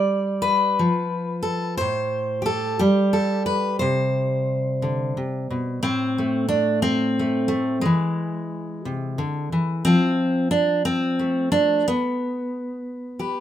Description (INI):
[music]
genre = folk, solo fingerstyle acoustic guitar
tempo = 60 BPM (dotted quarters)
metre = 6/8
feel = straight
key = C major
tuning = A4 = 441 Hz
[part]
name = fingerpicked steel-string acoustic guitar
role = solo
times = 0.0-13.4 s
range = A2 to D5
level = -20 LUFS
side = equal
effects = none
[sound]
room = moderate studio reverb, RT60 0.8 s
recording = minimal, uncompressed stereo recording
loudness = -20 LUFS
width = side -11 dB against mid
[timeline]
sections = 0.0-5.8 A section; 5.8-13.4 B section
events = none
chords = 0.0 N.C.; 3.8 C5; 5.8 N.C.; 7.8 E; 9.8 F6; 11.9 G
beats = 0.79 | 1.80 2.81 | 3.82 4.82 | 5.83 6.83 | 7.84 8.84 | 9.85 10.85 | 11.85 12.86